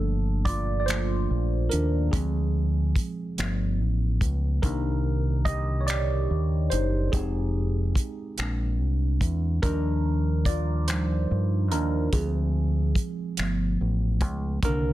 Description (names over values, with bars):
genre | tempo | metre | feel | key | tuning
slow six-eight R&B | 48 BPM (dotted quarters) | 6/8 | straight | G minor | A4 = 440 Hz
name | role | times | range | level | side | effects
tine electric piano | accompaniment | 0.0-14.9 s | D3 to Eb5 | -29 LUFS | right 2 dB | overdrive, phaser, plate reverb
deep dub fingered electric bass | bass | 0.0-14.9 s | F1 to G2 | -25 LUFS | equal | none
damped 70s drum kit | drums | 0.5-14.8 s | finger snaps, hi-hat, kick drum | -27 LUFS | equal | none
room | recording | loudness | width
little or no reverb | dense, heavily limited modern master | -23 LUFS | side -15 dB against mid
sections
0.0-14.9 A section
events
tine electric piano solo 0.0-14.9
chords
0.0 Gm9; 2.1 Dm7b5; 3.4 G7; 4.6 Cm7; 7.1 Fm7; 8.4 Bb7; 9.6 Ebmaj7; 12.1 Dm7b5; 13.4 G7